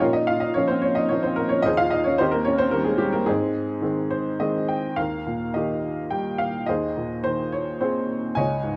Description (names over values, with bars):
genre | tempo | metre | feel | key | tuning
classical, lyrical solo piano | 108 BPM | 3/4 | rubato | Ab major | A4 = 440 Hz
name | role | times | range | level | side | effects
warm upright piano | solo | 0.0-8.8 s | Db2 to Ab5 | -24 LUFS | equal | none
room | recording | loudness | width
moderate recital hall reverb, RT60 1.5 s | close, detailed microphones | -24 LUFS | mono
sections
0.0-5.0 A section; 5.0-8.8 B section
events
upright piano fill 3.8-5.0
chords
0.0 Bbm; 1.7 Ab/Eb; 2.2 Eb; 3.3 Ab; 5.0 Eb; 6.7 Abadd9/Eb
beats
| 0.02 0.57 1.12 | 1.66 2.20 2.74 | 3.28 3.83 4.40 | 4.98 5.55 6.12 | 6.69 7.25 7.81 | 8.36